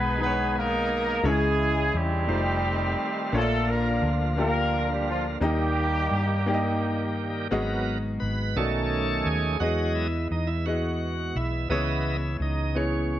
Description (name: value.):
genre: gospel.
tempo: 57 BPM (dotted quarters).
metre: 6/8.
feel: straight.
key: G# minor from 7.5 s.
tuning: A4 = 441 Hz.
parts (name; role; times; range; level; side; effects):
warm horn section; melody; 0.0-7.1 s; E#3 to B4; -26 LUFS; equal; none.
clear grand piano; accompaniment; 0.0-13.2 s; G#2 to D#5; -29 LUFS; left 2 dB; none.
bright tonewheel organ; sustained chords; 0.0-13.2 s; C#3 to D#5; -31 LUFS; right 3 dB; slow rotary speaker, overdrive.
hollow-body short-scale fingered electric bass; bass; 0.0-13.2 s; F1 to G2; -28 LUFS; equal; none.
warm brass ensemble; sustained chords; 7.5-13.2 s; E3 to D#5; -39 LUFS; equal; none.
room: light reverb, studio reverb.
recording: none.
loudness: -23 LUFS.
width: side -12 dB against mid.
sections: 0.0-7.5 A section; 7.5-13.2 B section.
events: tonewheel organ solo 7.5-13.2.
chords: 0.0 G#m; 1.2 C#m; 2.3 F7; 3.3 A#; 5.4 D#; 7.5 G#m7; 8.6 B7; 9.6 Emaj7; 11.7 C#m7.